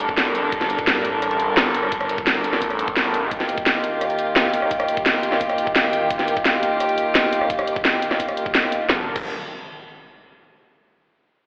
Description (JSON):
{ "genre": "dark technical drum and bass", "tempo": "172 BPM", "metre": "4/4", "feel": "straight", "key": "unclear", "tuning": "A4 = 440 Hz", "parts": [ { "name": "warm chamber string section", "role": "sustained chords", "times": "0.0-9.1 s", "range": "Eb3 to Bb4", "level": "-24 LUFS", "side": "equal", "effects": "sidechain pumping" }, { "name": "snarling distorted saw bass", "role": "bass", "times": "0.0-3.3, 8.9-9.3 s", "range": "G1 to G2", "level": "-28 LUFS", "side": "equal", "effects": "distortion, tube saturation" }, { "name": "drum and bass drum kit", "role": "drums", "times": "0.0-9.2 s", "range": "crash cymbal, hi-hat, rim click, snare drum", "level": "-24 LUFS", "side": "equal", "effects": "none" }, { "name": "electronic kick drum", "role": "drums", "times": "0.1-9.2 s", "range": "none", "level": "-34 LUFS", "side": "equal", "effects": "none" }, { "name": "impact", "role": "sound effects", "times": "8.9-10.3 s", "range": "none", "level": "-38 LUFS", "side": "equal", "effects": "none" } ], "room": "wet lush hall reverb, RT60 2.2 s", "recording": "played on a big sound system in a bare room, large studio reverb, telephone sound", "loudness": "-21 LUFS", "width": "mono", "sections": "0.0-8.9 A section; 8.9-10.3 B section", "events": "none", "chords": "0.0 Gm; 3.3 Eb; 8.9 N.C." }